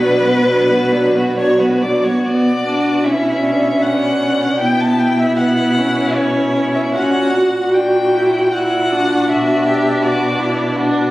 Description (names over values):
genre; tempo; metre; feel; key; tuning
classical, slow romantic movement for string quartet; 77 BPM; 3/4; uneven beats, rubato; B minor; A4 = 442 Hz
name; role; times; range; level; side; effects
rich violin; melody; 0.0-10.8 s; B4 to A5; -19 LUFS; left 2 dB; none
warm violin; second line; 0.0-11.1 s; D4 to G4; -20 LUFS; left 1 dB; none
rich viola; accompaniment; 0.0-11.1 s; F#3 to F#4; -16 LUFS; equal; none
rich cello; bass; 0.0-11.1 s; A#2 to B2; -22 LUFS; right 1 dB; none
room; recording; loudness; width
wet recital hall reverb, RT60 1.4 s; recorded on a phone in the room, club reverb, compression; -13 LUFS; side -17 dB against mid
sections
0.0-2.2 A section; 2.2-11.1 B section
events
none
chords
0.0 Bm; 4.6 Bsus4; 6.9 F#/A#; 9.3 Bm